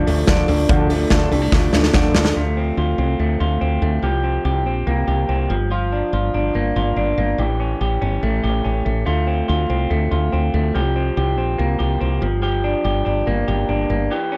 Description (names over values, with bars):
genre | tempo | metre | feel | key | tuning
jangly indie pop | 143 BPM | 4/4 | straight | D minor | A4 = 444 Hz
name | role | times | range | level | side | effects
fingerpicked steel-string acoustic guitar | accompaniment | 0.0-2.4 s | D3 to A4 | -24 LUFS | equal | none
electric guitar through a small old amp | arpeggios | 0.0-14.4 s | E3 to G4 | -23 LUFS | equal | analog delay
woody fretless electric bass | bass | 0.0-14.1 s | G1 to D2 | -23 LUFS | equal | none
big rock drum kit | drums | 0.1-2.3 s | hi-hat, kick drum, snare drum | -20 LUFS | equal | none
room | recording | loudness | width
light reverb | none | -19 LUFS | mono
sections
0.0-2.4 A section; 2.4-14.4 B section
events
drum fill 1.5-2.4; break 14.1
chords
0.0 Dm; 2.4 Dm7; 4.0 C7sus4; 5.5 Gm7; 7.4 A7; 9.1 Dm7; 10.8 C7sus4; 12.2 Gm7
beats
0.28 | 0.70 1.11 1.53 1.95 | 2.36 2.78 3.20 3.62 | 4.04 4.45 4.87 5.29 | 5.71 6.13 6.55 6.97 | 7.39 7.81 8.23 8.65 | 9.07 9.49 9.91 10.33 | 10.75 11.17 11.59 12.01 | 12.43 12.85 13.27 13.69 | 14.11